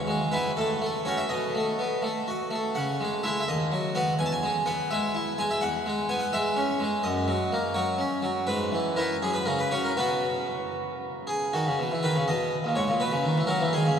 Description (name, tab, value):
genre	classical, baroque-style suite movement for harpsichord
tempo	82 BPM (dotted quarters)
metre	6/8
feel	rubato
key	E major, B major from 5.6 s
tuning	A4 = 441 Hz
part	harpsichord	solo	0.0-14.0 s	D#2 to A5	-24 LUFS	equal	none
room	wet cathedral reverb, RT60 6.3 s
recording	none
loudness	-25 LUFS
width	side -8 dB against mid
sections	0.0-11.5 A section; 11.5-14.0 B section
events	none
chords	0.0 E; 0.6 F#m/A; 1.3 B7; 2.7 C#m; 3.5 B/D#; 4.2 E; 5.6 C#m7/E; 7.0 F#; 8.5 E/G#; 9.2 F#5; 10.0 B5; 11.5 B; 13.0 G#m/B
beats	0.56 | 1.29 2.02 | 2.75 3.47 | 4.18 4.90 | 5.62 6.33 | 7.04 7.75 | 8.48 9.22 | 9.98 10.75 | 11.53 12.27 | 13.01 13.74